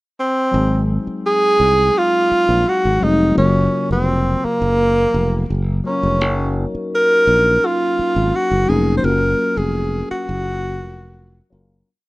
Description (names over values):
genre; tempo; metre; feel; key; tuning
lush 1970s-style soul; 84 BPM; 4/4; straight; Gb lydian; A4 = 442 Hz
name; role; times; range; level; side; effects
breathy tenor saxophone; melody; 0.2-11.5 s; Bb3 to C5; -16 LUFS; right 1 dB; none
tine electric piano; accompaniment; 0.5-11.9 s; Db3 to Bb4; -23 LUFS; left 2 dB; phaser
modern bright fingered electric bass; bass; 0.5-11.8 s; F1 to C2; -19 LUFS; equal; none
room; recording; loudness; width
studio reverb; rough home demo mix; -14 LUFS; side -20 dB against mid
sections
0.0-0.5 pickup bar; 0.5-11.9 verse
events
fade-out 9.1-11.9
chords
0.0 N.C.; 0.5 Ab7; 3.4 Gbmaj7; 6.2 Ebm7/Gb; 9.1 Gbmaj7